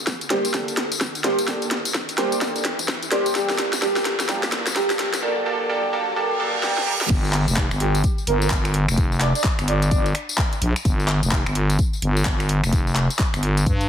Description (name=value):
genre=bass house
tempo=128 BPM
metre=4/4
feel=swing 62% on 16ths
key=G minor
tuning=A4 = 445 Hz
part: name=riser and reverse cymbal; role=sound effects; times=0.0-7.1 s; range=none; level=-32 LUFS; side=right 1 dB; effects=none
part: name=electronic kick drum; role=drums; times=0.1-13.8 s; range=none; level=-22 LUFS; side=equal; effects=high-pass filter on kick
part: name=garage drum kit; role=drums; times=0.1-13.9 s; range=crash cymbal, finger snaps, handclaps, hi-hat, snare drum, tambourine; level=-24 LUFS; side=left 1 dB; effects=overdrive, high-pass filter on snare, high-pass filter on hats, high-pass filter on perc, high-pass filter on cymbals
part: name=breathy flute-like synth lead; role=melody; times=0.3-4.9, 7.8-10.1 s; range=G4 to D5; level=-26 LUFS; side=right 1 dB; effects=wide subtle chorus, digital delay
part: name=band-passed chord stab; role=stabs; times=0.3-7.1 s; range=Bb3 to C5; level=-25 LUFS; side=right 2 dB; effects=chorus, phaser, vintage 12-bit sampler grit, sidechain pumping, digital delay
part: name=growling FM bass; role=bass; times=7.1-13.9 s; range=F1 to G2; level=-20 LUFS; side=equal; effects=tube saturation, sidechain pumping
room=moderate digital room reverb, RT60 1.1 s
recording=heavily compressed radio sound, multiband compression, high-pass filter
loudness=-19 LUFS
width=side -9 dB against mid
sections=0.0-7.1 A section; 7.1-13.9 B section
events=build-up 0.0-7.1; drum fill 0.0-5.2, 6.6-7.1; riser 0.0-7.1; filter sweep on synth stab 0.0-7.1; reverse cymbal 6.2-7.1; drop 7.1-13.9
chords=0.0 Gmadd9; 7.1 N.C.